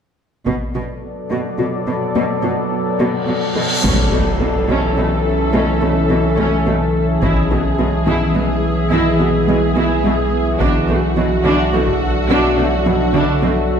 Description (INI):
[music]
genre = cinematic, hybrid orchestral and electronic film score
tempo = 71 BPM (dotted quarters)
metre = 6/8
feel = straight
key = B minor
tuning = A4 = 440 Hz
[part]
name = deep dark ambient pad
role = sustained chords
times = 0.8-13.8 s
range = E3 to E5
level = -19 LUFS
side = left 1 dB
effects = chorus, built-in reverb
[part]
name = resonant blip pluck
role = arpeggios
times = 0.5-13.6 s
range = D3 to A4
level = -24 LUFS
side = equal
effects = chorus, phaser, ping-pong delay
[part]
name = rich symphonic cello section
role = bass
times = 0.5-13.5 s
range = B2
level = -22 LUFS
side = right 2 dB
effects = none
[part]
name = taiko ensemble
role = drums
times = 0.5-12.1 s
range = none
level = -24 LUFS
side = equal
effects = none
[part]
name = cymbal swell and impact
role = sound effects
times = 3.2-5.5 s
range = none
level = -23 LUFS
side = equal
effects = none
[part]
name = rich symphonic viola section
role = accompaniment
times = 3.8-13.8 s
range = E3 to A4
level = -20 LUFS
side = right 1 dB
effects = none
[part]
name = soft dub sub bass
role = bass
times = 3.8-13.8 s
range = B1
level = -21 LUFS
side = equal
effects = none
[sound]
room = wet recital hall reverb, RT60 1.4 s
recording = heard from further back in the room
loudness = -14 LUFS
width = side -7 dB against mid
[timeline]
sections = 0.5-3.8 A section; 3.8-13.8 B section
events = cymbal swell 3.2-3.8; build-up 3.8-13.8; impact 3.8-5.5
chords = 0.5 Bm7; 3.8 A/B; 7.2 E/B; 10.6 Dadd9/B